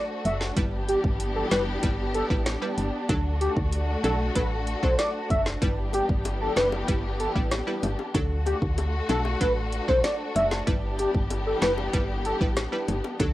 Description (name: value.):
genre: dancehall.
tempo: 95 BPM.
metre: 4/4.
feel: straight.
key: G major.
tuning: A4 = 440 Hz.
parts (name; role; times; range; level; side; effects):
warm velvety synth lead; melody; 0.0-12.4 s; G4 to E5; -27 LUFS; equal; chorus, cassette tape, plate reverb.
warm studio string section; sustained chords; 0.0-13.3 s; E3 to G4; -31 LUFS; left 1 dB; sidechain pumping, cassette tape, plate reverb.
woody FM bass; bass; 0.3-13.3 s; F#1 to D2; -28 LUFS; equal; none.
afro-pop drum kit; drums; 0.3-13.3 s; hi-hat, kick drum, rim click, snare drum; -28 LUFS; equal; none.
wavetable chord stab; accompaniment; 0.6-13.3 s; F#3 to B4; -32 LUFS; right 1 dB; cassette tape, plate reverb.
bongos; percussion; 5.9-13.2 s; none; -36 LUFS; left 6 dB; none.
room: light reverb.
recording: home recording on cassette.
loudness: -23 LUFS.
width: side -16 dB against mid.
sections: 0.0-13.3 A section.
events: none.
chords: 0.0 D; 0.6 G6; 3.1 D; 5.6 G6; 8.1 D; 10.7 G6.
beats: | 0.57 1.20 1.83 2.46 | 3.09 3.73 4.36 4.99 | 5.62 6.25 6.88 7.51 | 8.15 8.78 9.41 10.04 | 10.67 11.30 11.94 12.57 | 13.20.